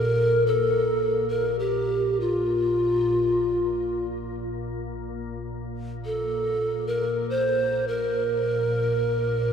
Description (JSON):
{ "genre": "world meditative, free-time meditation music", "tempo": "free time", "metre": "none", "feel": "none", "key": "unclear", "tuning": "A4 = 442 Hz", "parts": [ { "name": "mellow hollow polished pan flute", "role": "melody", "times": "0.0-9.5 s", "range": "F4 to C5", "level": "-23 LUFS", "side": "equal", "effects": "diffuse ambient delay" }, { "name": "soft additive organ-like pad", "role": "drone", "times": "0.0-9.5 s", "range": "Bb1 to Bb2", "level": "-30 LUFS", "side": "left 1 dB", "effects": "ensemble chorus, built-in reverb" } ], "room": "wet huge ambient reverb, RT60 4.1 s", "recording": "dark, warm production", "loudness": "-22 LUFS", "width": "side -7 dB against mid", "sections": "0.0-9.5 A section", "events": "none", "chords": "none", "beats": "free time" }